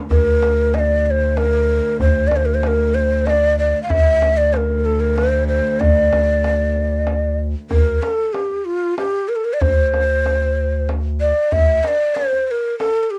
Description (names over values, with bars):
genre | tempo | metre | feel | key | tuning
Persian modal ensemble | 95 BPM | 3/4 | straight | D dastgah shur | A4 = 444 Hz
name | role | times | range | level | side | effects
warm cello | drone | 0.0-7.8 s | D2 | -28 LUFS | equal | cassette tape
breathy hollow ney | melody | 0.1-13.2 s | F4 to F5 | -19 LUFS | equal | cassette tape
round analog bass | bass | 0.1-11.8 s | D2 | -22 LUFS | equal | none
tombak | percussion | 0.1-12.9 s | none | -24 LUFS | equal | none
room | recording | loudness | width
light reverb | home recording on cassette | -18 LUFS | mono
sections
0.0-7.7 A section; 7.7-13.2 B section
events
none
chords
none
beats
| 0.10 0.73 1.37 | 2.00 2.63 3.27 | 3.90 4.53 5.17 | 5.80 6.44 7.07 | 7.71 8.34 8.98 | 9.61 10.25 10.88 | 11.52 12.16 12.79